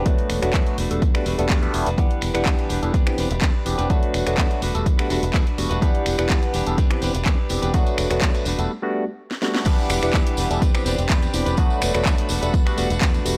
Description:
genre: filtered disco house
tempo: 125 BPM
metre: 4/4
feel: straight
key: unclear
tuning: A4 = 440 Hz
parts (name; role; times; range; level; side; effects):
- barky tine electric piano; accompaniment; 0.0-13.4 s; E3 to F#5; -27 LUFS; equal; phaser, sidechain pumping, low-pass filter
- direct-recorded clean electric guitar; riff; 0.0-13.4 s; A3 to B4; -31 LUFS; equal; sidechain pumping, low-pass filter
- fingered electric bass; bass; 0.1-13.3 s; E1 to E2; -28 LUFS; equal; tube saturation, sidechain pumping, low-pass filter
- electronic kick drum; drums; 0.1-13.1 s; none; -22 LUFS; equal; overdrive, small room ambience
- house drum kit; drums; 0.1-13.4 s; crash cymbal, finger snaps, handclaps, hi-hat, snare drum; -30 LUFS; equal; overdrive, sidechain pumping on hats, small room ambience, sidechain pumping on cymbals
- tambourine; percussion; 0.1-13.4 s; none; -37 LUFS; equal; sidechain pumping on perc, low-pass filter on perc
- warm studio violin section; sustained chords; 9.7-13.4 s; G3 to D6; -34 LUFS; equal; sidechain pumping, low-pass filter
room: little or no reverb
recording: dry, gritty hardware recording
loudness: -21 LUFS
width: mono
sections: 0.0-9.7 A section; 9.7-13.4 B section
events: break 8.7-9.7; drum fill 9.3-9.7; band accent 9.5; drop 9.7-13.4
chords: 0.1 Bm7/E; 0.8 Gmaj9/E; 2.9 Cmaj9/E; 3.9 Bm7/E; 4.6 Gmaj9/E; 6.8 Cmaj9/E; 7.7 Bm7/E; 8.5 Gmaj9/E; 10.6 Cmaj9/E; 11.6 Bm7/E; 12.3 Gmaj9/E

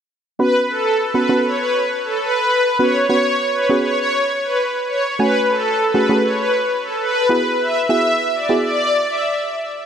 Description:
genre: dance-pop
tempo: 100 BPM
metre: 4/4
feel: straight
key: unclear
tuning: A4 = 441 Hz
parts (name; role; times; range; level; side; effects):
- supersaw pad; melody; 0.4-9.2 s; A4 to E5; -16 LUFS; equal; tape echo
- soft round pluck; accompaniment; 0.4-9.5 s; A3 to G#5; -20 LUFS; right 1 dB; chorus
room: light reverb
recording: none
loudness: -15 LUFS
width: side -8 dB against mid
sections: 0.4-9.9 A section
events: none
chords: 0.4 Bsus2; 5.2 F#madd9; 7.3 Eadd9

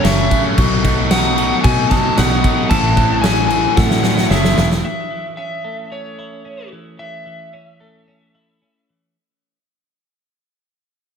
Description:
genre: post-rock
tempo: 112 BPM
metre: 4/4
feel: straight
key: unclear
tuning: A4 = 445 Hz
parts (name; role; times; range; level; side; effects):
- overdriven slide guitar; melody; 0.0-8.8 s; C#5 to A5; -21 LUFS; left 2 dB; digital delay
- glockenspiel with soft plastic mallets; arpeggios; 0.0-4.8 s; C#6 to F#6; -28 LUFS; right 2 dB; digital delay
- biting overdriven guitar; riff; 0.0-4.8 s; F#2 to E4; -20 LUFS; left 10 dB; none
- cranked stack guitar; riff; 0.0-4.8 s; F#2 to E4; -22 LUFS; right 14 dB; overdrive, phaser
- fingered electric bass; bass; 0.0-4.8 s; E1 to B2; -19 LUFS; equal; none
- huge arena drum kit; drums; 0.0-4.8 s; crash cymbal, kick drum, snare drum; -17 LUFS; equal; none
- twelve-string electric guitar; arpeggios; 4.8-9.2 s; E3 to E4; -37 LUFS; left 1 dB; digital delay
room: light reverb, studio ambience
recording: none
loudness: -12 LUFS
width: side -7 dB against mid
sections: 0.0-4.8 A section; 4.8-9.2 B section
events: drum fill 3.8-4.8; fade-out 4.8-9.2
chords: 0.0 F#m7; 0.6 B7; 2.7 Am6; 4.8 A/E

